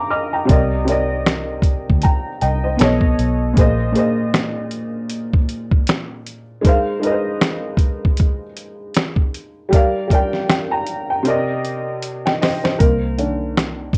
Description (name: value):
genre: lo-fi hip hop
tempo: 78 BPM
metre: 4/4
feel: swing 58% on 16ths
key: C minor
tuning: A4 = 435 Hz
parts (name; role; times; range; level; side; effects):
- dark upright piano; accompaniment; 0.0-14.0 s; Bb2 to F6; -22 LUFS; equal; cassette tape, low-pass filter
- vintage muted fingered electric bass; bass; 0.5-3.9, 12.8-14.0 s; Bb1 to D2; -24 LUFS; equal; none
- lo-fi sampler-style drum kit; drums; 0.5-14.0 s; finger snaps, hi-hat, kick drum, snare drum; -19 LUFS; equal; none
room: light reverb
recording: worn, warbling old tape, cassette tape, warbly pitch drift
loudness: -18 LUFS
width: mono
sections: 0.0-12.8 A section; 12.8-14.0 B section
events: upright piano fill 0.0-0.5; drum fill 11.3-12.8; upright piano solo 12.8-14.0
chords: 0.5 Cm7; 2.8 B9; 3.6 Bb7sus4; 6.6 Ab6; 9.7 Gm7; 11.3 Cm9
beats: | 0.49 1.26 2.03 2.80 | 3.57 4.34 5.11 5.88 | 6.65 7.42 8.18 8.95 | 9.72 10.49 11.26 12.03 | 12.80 13.57